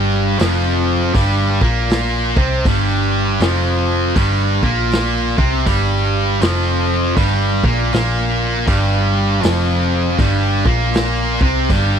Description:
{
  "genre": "blues rock power trio and southern rock",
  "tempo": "80 BPM",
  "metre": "4/4",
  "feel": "swing 62% on 8ths",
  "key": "G minor",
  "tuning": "A4 = 440 Hz",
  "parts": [
    { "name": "tight distorted guitar", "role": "riff", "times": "0.0-12.0 s", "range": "F2 to C4", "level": "-17 LUFS", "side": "equal", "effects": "distortion" },
    { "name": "hollow-body short-scale picked electric bass", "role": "bass", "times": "0.0-12.0 s", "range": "F1 to C2", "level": "-18 LUFS", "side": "equal", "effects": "none" },
    { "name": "vintage drum kit", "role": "drums", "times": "0.4-11.9 s", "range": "hi-hat, kick drum, snare drum", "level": "-18 LUFS", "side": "equal", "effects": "none" }
  ],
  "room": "little or no reverb",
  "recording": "dry, close 1970s-style studio recording",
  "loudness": "-14 LUFS",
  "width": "side -8 dB against mid",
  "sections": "0.0-12.0 A section",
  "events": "none",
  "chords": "0.0 Gm"
}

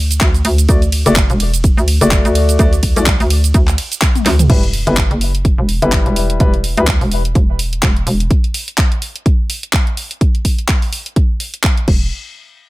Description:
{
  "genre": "bass house",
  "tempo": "126 BPM",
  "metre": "4/4",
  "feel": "swing 57% on 16ths",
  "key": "E minor",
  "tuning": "A4 = 439 Hz",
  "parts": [
    { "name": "hollow knocking FM bass", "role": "bass", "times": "0.0-8.3, 11.9-12.1 s", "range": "E1 to D2", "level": "-15 LUFS", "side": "equal", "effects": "tube saturation, sidechain pumping" },
    { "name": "house drum kit", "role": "drums", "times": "0.1-12.0 s", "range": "crash cymbal, handclaps, hi-hat, ride cymbal, shaker, snare drum, toms", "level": "-19 LUFS", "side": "equal", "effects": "none" },
    { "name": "electronic kick drum", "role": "drums", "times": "0.2-12.0 s", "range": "none", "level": "-13 LUFS", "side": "equal", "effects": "none" },
    { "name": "dark baby grand piano", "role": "stabs", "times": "0.7-6.9 s", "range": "G3 to D5", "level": "-18 LUFS", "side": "left 3 dB", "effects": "vintage 12-bit sampler grit, sidechain pumping, ping-pong delay" }
  ],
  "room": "digital ambience",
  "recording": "none",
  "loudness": "-12 LUFS",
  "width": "side -18 dB against mid",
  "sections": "0.0-4.5 A section; 4.5-12.1 B section",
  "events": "drop 0.0-4.5; drum fill 4.1-4.5",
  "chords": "0.0 D; 4.5 Em; 11.9 N.C."
}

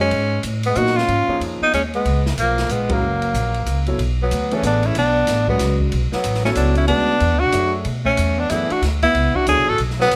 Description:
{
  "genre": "modal jazz",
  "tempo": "186 BPM",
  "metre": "3/4",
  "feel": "swing 62% on 8ths",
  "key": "B dorian from 4.0 s",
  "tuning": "A4 = 440 Hz",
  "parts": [
    { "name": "breathy tenor saxophone", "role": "melody", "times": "0.0-10.2 s", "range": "A#3 to A4", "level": "-22 LUFS", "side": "equal", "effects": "plate reverb" },
    { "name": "breathy alto saxophone", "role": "second line", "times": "0.0-10.2 s", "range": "E#3 to F#4", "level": "-28 LUFS", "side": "equal", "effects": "none" },
    { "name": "upright bass", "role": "bass", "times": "0.0-10.2 s", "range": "F#1 to B2", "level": "-24 LUFS", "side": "equal", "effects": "none" },
    { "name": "open jazz drum kit", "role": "drums", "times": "0.1-10.2 s", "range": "hi-hat, kick drum, ride cymbal, snare drum", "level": "-31 LUFS", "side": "equal", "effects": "none" },
    { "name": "warm grand piano", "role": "accompaniment", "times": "0.8-9.7 s", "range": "C#3 to E5", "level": "-28 LUFS", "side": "equal", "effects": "none" }
  ],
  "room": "moderate studio reverb, RT60 0.9 s",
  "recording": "none",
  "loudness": "-19 LUFS",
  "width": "mono",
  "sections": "0.0-4.0 A section; 4.0-10.2 B section",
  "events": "band accent 2.9",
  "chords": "0.1 C#add9; 3.0 F#; 4.0 Bm7"
}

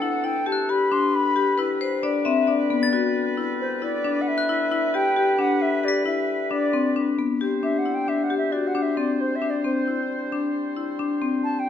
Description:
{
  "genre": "contemporary instrumental, chamber music in an uneven meter",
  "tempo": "134 BPM",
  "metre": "5/4",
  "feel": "straight",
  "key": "D mixolydian",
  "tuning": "A4 = 438 Hz",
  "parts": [
    { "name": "baroque flute", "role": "melody", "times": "0.0-11.7 s", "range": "C5 to C6", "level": "-25 LUFS", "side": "equal", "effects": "none" },
    { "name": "warm woodwind section", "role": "sustained chords", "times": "0.0-11.7 s", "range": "D2 to C5", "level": "-31 LUFS", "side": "equal", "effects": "none" },
    { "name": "marimba with medium hard mallets", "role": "arpeggios", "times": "0.0-11.5 s", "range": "B3 to G4", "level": "-23 LUFS", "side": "left 4 dB", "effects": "none" },
    { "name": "glockenspiel with hard plastic mallets", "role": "texture", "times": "0.0-7.6 s", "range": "E6 to B6", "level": "-33 LUFS", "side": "left 2 dB", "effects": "none" },
    { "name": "vibraphone with hard mallets", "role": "second line", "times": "1.6-3.3 s", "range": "B4 to E5", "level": "-25 LUFS", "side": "left 6 dB", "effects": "none" }
  ],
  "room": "moderate recital hall reverb, RT60 1.6 s",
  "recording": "close, detailed microphones",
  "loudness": "-21 LUFS",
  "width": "side -9 dB against mid",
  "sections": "0.0-7.4 A section; 7.4-11.7 B section",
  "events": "none",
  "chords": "0.0 C6/D; 0.7 G/D; 7.4 D7sus4"
}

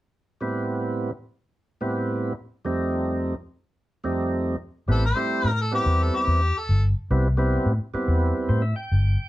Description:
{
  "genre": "blues",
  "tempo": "108 BPM",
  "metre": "4/4",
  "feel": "straight",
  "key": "A minor",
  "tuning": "A4 = 437 Hz",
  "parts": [
    { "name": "percussive tonewheel organ", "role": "accompaniment", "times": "0.4-9.3 s", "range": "F2 to G5", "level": "-26 LUFS", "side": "right 1 dB", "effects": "slow rotary speaker, overdrive" },
    { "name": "mellow harmonica", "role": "melody", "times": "4.9-6.8 s", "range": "G4 to C5", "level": "-25 LUFS", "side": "left 2 dB", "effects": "overdrive" },
    { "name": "vintage muted fingered electric bass", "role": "bass", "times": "4.9-9.1 s", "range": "G1 to A2", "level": "-21 LUFS", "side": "equal", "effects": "none" }
  ],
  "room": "light reverb",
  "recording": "band playing live in one room",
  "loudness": "-22 LUFS",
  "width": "side -16 dB against mid",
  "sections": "0.4-4.9 A section; 4.9-9.3 B section",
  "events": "tonewheel organ fill 8.2-9.3",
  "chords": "0.4 Am7; 2.7 F7; 4.9 Am7"
}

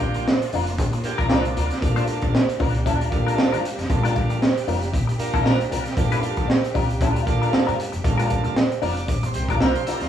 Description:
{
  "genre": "funk",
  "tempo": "116 BPM",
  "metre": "4/4",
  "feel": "swing 56% on 16ths",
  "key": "G minor",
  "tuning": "A4 = 443 Hz",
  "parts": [
    { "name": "hollow-body jazz guitar", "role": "accompaniment", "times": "0.0-10.1 s", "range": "D4 to C5", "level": "-27 LUFS", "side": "left 5 dB", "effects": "wah" },
    { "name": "warm studio string section", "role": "sustained chords", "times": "0.0-10.1 s", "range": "Bb3 to G4", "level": "-34 LUFS", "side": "right 1 dB", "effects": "none" },
    { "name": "tonewheel organ", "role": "stabs", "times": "0.0-10.1 s", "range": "Bb3 to F5", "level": "-28 LUFS", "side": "right 3 dB", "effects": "slow rotary speaker" },
    { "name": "crunchy breakbeat drum kit", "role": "drums", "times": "0.0-10.1 s", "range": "hi-hat, kick drum, snare drum", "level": "-21 LUFS", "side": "equal", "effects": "none" },
    { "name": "upright bass", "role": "bass", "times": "0.2-10.1 s", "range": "F1 to G2", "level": "-28 LUFS", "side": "equal", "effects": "none" }
  ],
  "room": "moderate large studio reverb, RT60 0.9 s",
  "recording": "band playing live in one room, small room ambience",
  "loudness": "-19 LUFS",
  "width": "side -10 dB against mid",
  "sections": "0.0-10.1 A section",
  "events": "tonewheel organ fill 0.8-1.8, 8.6-10.1",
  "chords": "0.0 Gm7"
}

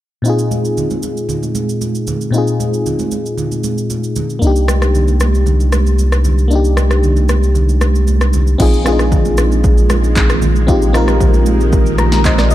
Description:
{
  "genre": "amapiano",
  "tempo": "115 BPM",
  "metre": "4/4",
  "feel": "straight",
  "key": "unclear",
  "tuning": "A4 = 440 Hz",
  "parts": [
    { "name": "FM electric piano", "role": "accompaniment", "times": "0.2-12.5 s", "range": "Bb2 to Bb5", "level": "-17 LUFS", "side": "left 2 dB", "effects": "chorus" },
    { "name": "deep house drum kit", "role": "drums", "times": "0.2-12.5 s", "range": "crash cymbal, handclaps, kick drum, rim click, shaker, snare drum", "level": "-17 LUFS", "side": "equal", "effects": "none" },
    { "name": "congas", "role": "percussion", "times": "0.5-12.5 s", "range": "none", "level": "-23 LUFS", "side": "right 6 dB", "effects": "none" },
    { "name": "punchy sub bass", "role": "bass", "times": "4.4-12.5 s", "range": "Bb1 to C2", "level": "-13 LUFS", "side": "equal", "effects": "none" },
    { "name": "string machine, full ensemble", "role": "sustained chords", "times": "8.6-12.5 s", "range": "Eb3 to Bb3", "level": "-21 LUFS", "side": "right 2 dB", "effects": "ensemble chorus, sidechain pumping" }
  ],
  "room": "light reverb",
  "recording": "dark, warm production",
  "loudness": "-11 LUFS",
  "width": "side -14 dB against mid",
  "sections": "0.2-8.6 A section; 8.6-12.5 B section",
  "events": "kick muted 6.5-8.6; FM electric piano fill 11.7-12.5",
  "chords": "0.2 Bb7sus4; 4.4 Cm9; 8.6 Bb7sus4"
}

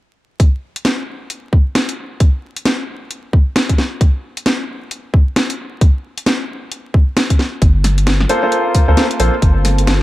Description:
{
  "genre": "UK garage, two-step garage",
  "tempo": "133 BPM",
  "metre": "4/4",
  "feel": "swing 61% on 16ths",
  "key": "G minor",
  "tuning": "A4 = 438 Hz",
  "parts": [
    { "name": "electronic kick drum", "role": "drums", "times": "0.4-9.5 s", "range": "none", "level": "-11 LUFS", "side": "equal", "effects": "none" },
    { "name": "garage drum kit", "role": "drums", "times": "0.4-10.0 s", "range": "hi-hat, snare drum", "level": "-18 LUFS", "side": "equal", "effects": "none" },
    { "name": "soft string machine", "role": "sustained chords", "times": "8.0-10.0 s", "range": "Bb3 to A4", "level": "-25 LUFS", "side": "right 1 dB", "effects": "ensemble chorus, sidechain pumping" },
    { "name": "saturated sub bass", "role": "bass", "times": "7.6-10.0 s", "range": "G1 to D2", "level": "-14 LUFS", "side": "equal", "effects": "none" },
    { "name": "clear baby grand piano", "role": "stabs", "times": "8.3-9.3 s", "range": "Bb3 to C5", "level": "-16 LUFS", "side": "equal", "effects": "tape echo" }
  ],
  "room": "light reverb, digital ambience",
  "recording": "echo-heavy mix, vinyl crackle",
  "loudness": "-13 LUFS",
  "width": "side -16 dB against mid",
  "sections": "0.4-10.0 A section",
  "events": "none",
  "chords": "0.4 N.C.; 7.6 Gm11"
}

